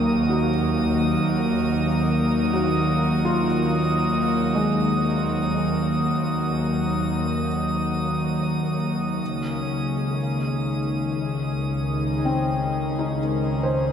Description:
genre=ambient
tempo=free time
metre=none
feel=none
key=Eb minor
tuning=A4 = 440 Hz
part: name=airy breathy pad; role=sustained chords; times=0.0-13.9 s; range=Db3 to Eb4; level=-22 LUFS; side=equal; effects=chorus
part: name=felt-muted upright piano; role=arpeggios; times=0.0-13.9 s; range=Ab3 to Gb5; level=-29 LUFS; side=left 2 dB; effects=diffuse ambient delay
part: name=bright studio double bass section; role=bass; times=0.0-13.9 s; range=Db2 to Eb2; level=-33 LUFS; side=equal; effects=none
part: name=analog drone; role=drone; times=0.0-13.9 s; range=Eb3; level=-30 LUFS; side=left 1 dB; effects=chorus
part: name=drifting glass-harmonics texture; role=texture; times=0.0-13.9 s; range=Eb6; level=-30 LUFS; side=right 1 dB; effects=chorus, built-in reverb
room=wet concert hall reverb, RT60 2.4 s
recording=none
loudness=-21 LUFS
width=side -8 dB against mid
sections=0.0-13.9 A section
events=fade-out on double bass section 0.0-13.9; fade-out on synth texture 0.0-13.9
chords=0.0 Ebm; 9.2 Dbsus2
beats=free time

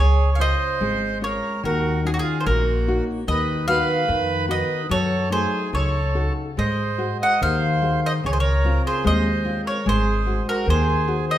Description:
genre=fado-style ballad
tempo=73 BPM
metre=2/4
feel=rubato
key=Db major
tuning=A4 = 440 Hz
part: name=mandolin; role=melody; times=0.0-11.4 s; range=Gb4 to Gb5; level=-24 LUFS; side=left 1 dB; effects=none
part: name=accordion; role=second line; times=0.0-11.4 s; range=Eb4 to Eb5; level=-27 LUFS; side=right 6 dB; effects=none
part: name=nylon-string guitar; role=accompaniment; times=0.0-11.4 s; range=Db3 to Db5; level=-25 LUFS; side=left 2 dB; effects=none
part: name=upright bass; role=bass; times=0.0-11.2 s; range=Ab1 to Ab2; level=-23 LUFS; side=equal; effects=none
room=wet recital hall reverb, RT60 1.6 s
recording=minimal, uncompressed stereo recording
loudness=-19 LUFS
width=side -12 dB against mid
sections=0.0-11.4 A section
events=none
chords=0.0 Dbmaj7; 1.6 Ebm7; 3.3 Cb/Eb; 4.9 Gbm6; 6.6 Ab7; 8.2 Dbmaj7; 9.9 Ab7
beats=0.81 | 1.64 2.47 | 3.28 4.08 | 4.90 5.73 | 6.58 7.42 | 8.25 9.06 | 9.86 10.67

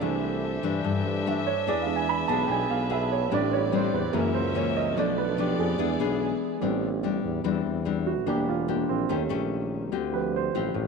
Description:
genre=bossa nova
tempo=145 BPM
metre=4/4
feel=straight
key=A minor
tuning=A4 = 439 Hz
part: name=nylon-string guitar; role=accompaniment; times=0.0-10.9 s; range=F#2 to G#4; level=-29 LUFS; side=left 12 dB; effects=none
part: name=warm baby grand piano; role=accompaniment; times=0.0-10.9 s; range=E3 to B5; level=-28 LUFS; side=right 12 dB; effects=none
part: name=warm chamber string section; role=sustained chords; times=0.0-6.6 s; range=B3 to E5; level=-34 LUFS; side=left 2 dB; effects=none
part: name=warm tuba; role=bass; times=0.0-10.9 s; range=E1 to G2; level=-31 LUFS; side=equal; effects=none
room=light reverb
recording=1960s-style stereo with parts hard left and right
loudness=-24 LUFS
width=side -4 dB against mid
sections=0.0-6.6 A section; 6.6-10.9 A section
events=grand piano solo 0.0-6.6, 6.6-10.9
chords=0.0 C69; 1.7 E7; 3.3 Am11; 4.1 F#7; 5.0 Bm7b5; 5.8 E7; 6.6 Am11; 8.3 Em7b5; 9.1 D#7#11; 9.9 Dm11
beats=| 0.02 0.43 0.84 1.25 | 1.67 2.08 2.49 2.91 | 3.32 3.73 4.14 4.56 | 4.97 5.38 5.79 6.21 | 6.62 7.03 7.45 7.86 | 8.27 8.68 9.10 9.51 | 9.92 10.33 10.75

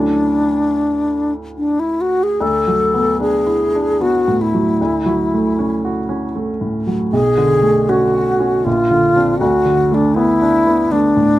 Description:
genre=classical, impressionist duo for alto flute and grand piano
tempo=77 BPM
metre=3/4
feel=uneven beats, rubato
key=D lydian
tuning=A4 = 440 Hz
part: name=bright wooden-headed alto flute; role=melody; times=0.0-11.4 s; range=D4 to A4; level=-15 LUFS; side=left 1 dB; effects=none
part: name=warm baby grand piano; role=accompaniment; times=0.0-11.4 s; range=Bb1 to F#4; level=-18 LUFS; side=right 1 dB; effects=none
room=light reverb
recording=close, detailed microphones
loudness=-13 LUFS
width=side -15 dB against mid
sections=0.0-2.4 A section; 2.4-11.4 A section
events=none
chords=0.0 Dmaj9; 2.4 D69; 4.8 F#m7/D; 7.1 Bm9; 8.7 Bbadd9; 9.4 D5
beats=0.71 1.57 | 2.42 3.21 4.00 | 4.79 5.58 6.34 | 7.12 7.90 8.66 | 9.41 10.17 10.94

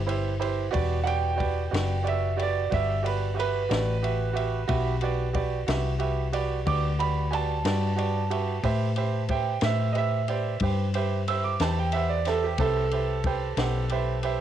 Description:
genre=slow blues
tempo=61 BPM (dotted quarters)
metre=12/8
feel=straight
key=E minor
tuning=A4 = 440 Hz
part: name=hollow-body short-scale fingered electric bass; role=bass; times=0.0-14.4 s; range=E1 to A2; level=-27 LUFS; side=left 2 dB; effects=none
part: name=bright concert grand piano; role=accompaniment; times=0.1-14.4 s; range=E4 to G5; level=-30 LUFS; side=right 8 dB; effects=cassette tape
part: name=compact cocktail drum kit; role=drums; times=0.1-14.4 s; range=kick drum, ride cymbal, snare drum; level=-34 LUFS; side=left 2 dB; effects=cassette tape
part: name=bright upright piano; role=second line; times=1.0-14.4 s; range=G4 to E6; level=-30 LUFS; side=right 6 dB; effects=cassette tape
room=light reverb, studio ambience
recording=home recording on cassette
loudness=-24 LUFS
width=side -10 dB against mid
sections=0.0-14.4 A section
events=upright piano solo 0.0-14.4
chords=0.0 Am7 (rootless); 0.7 Em7; 8.6 Am7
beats=| 0.74 1.73 2.72 3.71 | 4.69 5.68 6.67 7.66 | 8.64 9.63 10.62 11.61 | 12.59 13.58

